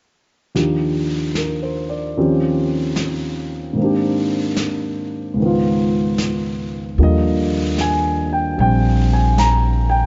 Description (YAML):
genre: jazz ballad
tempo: 75 BPM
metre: 4/4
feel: swing 66% on 8ths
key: Eb major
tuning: A4 = 442 Hz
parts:
  - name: warm concert grand piano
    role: accompaniment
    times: 0.5-10.1 s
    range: Db2 to Bb5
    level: -20 LUFS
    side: equal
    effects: none
  - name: vintage brush drum kit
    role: drums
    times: 0.6-10.1 s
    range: brushed snare drum, hi-hat, snare drum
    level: -31 LUFS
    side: equal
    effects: none
  - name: upright bass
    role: bass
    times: 7.0-10.1 s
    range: Bb1 to Eb2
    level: -19 LUFS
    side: equal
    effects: none
room: light reverb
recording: dark, warm production, nothing above 7.6 kHz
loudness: -19 LUFS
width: mono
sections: 0.6-7.0 A section; 7.0-10.1 B section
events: none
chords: 0.6 Ebmaj7; 2.2 Eb13; 3.8 Abmaj9#11; 5.4 Db9; 7.0 Ebmaj9